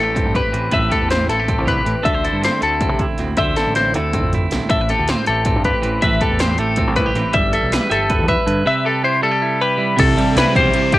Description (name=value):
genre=math rock and midwest emo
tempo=317 BPM (eighths)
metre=7/8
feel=straight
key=C major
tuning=A4 = 442 Hz
part: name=clean electric guitar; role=accompaniment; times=0.0-11.0 s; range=A2 to E5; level=-20 LUFS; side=right 4 dB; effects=cassette tape
part: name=twelve-string electric guitar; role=arpeggios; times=0.0-11.0 s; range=G4 to E5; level=-18 LUFS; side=left 3 dB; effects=cassette tape
part: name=growling picked electric bass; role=bass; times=0.0-10.7 s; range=G1 to C3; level=-22 LUFS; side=equal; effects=overdrive
part: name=80s electronic pad drums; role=drums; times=0.2-11.0 s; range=crash cymbal, hi-hat, kick drum, ride cymbal, snare drum, toms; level=-21 LUFS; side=equal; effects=gated reverb on snare and toms, cassette tape
part: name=overdriven electric guitar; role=riff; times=10.0-11.0 s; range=C3 to E4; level=-21 LUFS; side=left 1 dB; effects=spring reverb, cassette tape
room=little or no reverb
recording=home recording on cassette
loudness=-15 LUFS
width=side -16 dB against mid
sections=0.0-10.0 A section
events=drum fill 3.6-4.7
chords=0.0 Am9; 2.1 D7sus2; 4.7 Am9; 7.3 G69; 8.7 Cmaj7